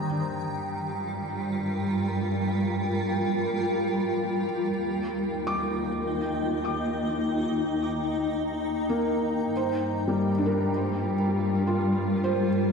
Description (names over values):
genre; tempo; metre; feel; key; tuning
ambient; 51 BPM; 4/4; straight; unclear; A4 = 440 Hz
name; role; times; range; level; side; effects
granular cloud pad; sustained chords; 0.0-12.7 s; G3 to Bb5; -27 LUFS; equal; built-in reverb
felt-muted upright piano; arpeggios; 0.0-12.7 s; G3 to D6; -31 LUFS; left 1 dB; ping-pong delay
dark symphonic cello section; bass; 0.0-12.7 s; Eb2 to G2; -32 LUFS; equal; none
room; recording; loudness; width
wet concert hall reverb, RT60 2.3 s; none; -25 LUFS; side -5 dB against mid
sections
0.0-12.7 A section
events
none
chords
0.0 Gm7; 4.8 Eb; 9.5 Gm7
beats
| 0.05 1.24 2.42 3.61 | 4.79 5.97 7.14 8.32 | 9.51 10.69 11.89